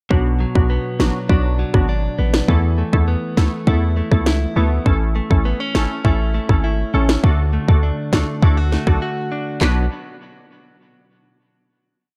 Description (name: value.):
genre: dancehall.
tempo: 101 BPM.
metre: 4/4.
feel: straight.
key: B minor.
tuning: A4 = 440 Hz.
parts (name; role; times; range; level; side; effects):
glassy wavetable pluck; accompaniment; 0.1-9.8 s; F#3 to B4; -26 LUFS; equal; chorus.
direct-recorded clean electric guitar; arpeggios; 0.1-9.9 s; B2 to F#4; -26 LUFS; equal; delay.
hard-hitting 808-style bass; bass; 0.1-9.9 s; G#1 to E2; -20 LUFS; equal; none.
island pop drum kit; drums; 0.1-9.8 s; handclaps, kick drum, rim click, snare drum; -19 LUFS; equal; none.
room: little or no reverb.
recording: dark, warm production.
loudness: -18 LUFS.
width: mono.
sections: 0.1-9.6 verse; 9.6-12.0 final chord.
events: break 9.0-9.6.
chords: 0.1 Bm; 2.5 Esus4; 4.9 A; 7.2 D; 9.6 Bm.